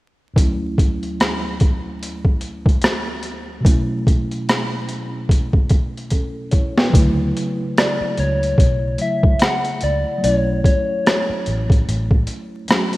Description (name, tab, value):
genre	lo-fi hip hop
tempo	73 BPM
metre	4/4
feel	swing 57% on 16ths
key	unclear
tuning	A4 = 440 Hz
part	mellow tine electric piano	accompaniment	0.3-13.0 s	D2 to C#5	-25 LUFS	equal	medium stereo tremolo, cassette tape, low-pass filter
part	boom bap sampler-style drum kit	drums	0.4-13.0 s	hi-hat, kick drum, rim click, snare drum	-17 LUFS	equal	overdrive, vintage 12-bit sampler grit
part	vintage muted fingered electric bass	bass	6.9-12.3 s	A1 to D2	-20 LUFS	equal	none
part	soft struck synth lead	melody	7.8-12.2 s	C#5 to F#5	-21 LUFS	left 2 dB	chorus, low-pass filter
room	light reverb, digital ambience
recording	rough home demo mix, vinyl crackle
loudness	-16 LUFS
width	side -18 dB against mid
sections	0.4-6.9 A section; 6.9-13.0 B section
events	filter sweep on tine electric piano 0.4-6.9; drum fill 6.1-6.9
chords	0.4 Dmaj9; 3.7 B9sus4; 6.9 Dmaj9; 10.2 B9sus4